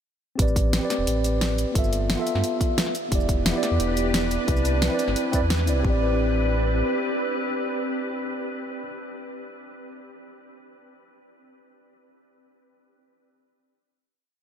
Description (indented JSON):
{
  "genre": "liquid drum and bass",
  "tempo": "176 BPM",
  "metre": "4/4",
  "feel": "straight",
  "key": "A minor",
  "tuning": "A4 = 440 Hz",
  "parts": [
    { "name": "mellow tine electric piano", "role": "accompaniment", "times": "0.4-8.9 s", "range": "B3 to E5", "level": "-26 LUFS", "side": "right 1 dB", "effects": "fast stereo tremolo, tape echo" },
    { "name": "sub bass with octave", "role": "bass", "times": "0.4-6.8 s", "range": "E1 to G2", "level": "-25 LUFS", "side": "equal", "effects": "none" },
    { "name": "electronic kick drum", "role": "drums", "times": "0.4-5.9 s", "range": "none", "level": "-24 LUFS", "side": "equal", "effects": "none" },
    { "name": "pop drum kit", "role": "drums", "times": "0.4-5.7 s", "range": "hi-hat, shaker, snare drum", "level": "-28 LUFS", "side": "equal", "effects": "none" },
    { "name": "glassy FM pad", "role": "sustained chords", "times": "3.1-8.9 s", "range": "C4 to B4", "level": "-30 LUFS", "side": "left 1 dB", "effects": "ensemble chorus, built-in reverb, sidechain pumping" }
  ],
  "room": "moderate huge ambient reverb, RT60 8.0 s",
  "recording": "dreamy mix soaked in reverb",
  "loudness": "-21 LUFS",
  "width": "side -8 dB against mid",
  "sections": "0.4-5.8 drop; 5.8-8.6 final chord",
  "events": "drop 0.4-5.8",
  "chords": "0.4 Am11; 1.8 G13; 2.9 Em7; 4.5 Cmaj9; 5.8 Am11",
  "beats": "| 0.39 0.73 1.07 1.41 | 1.75 2.10 2.44 2.78 | 3.12 3.46 3.80 4.14 | 4.48 4.82 5.16 5.50 | 5.84 6.19 6.53 6.87 | 7.21 7.55 7.89 8.23"
}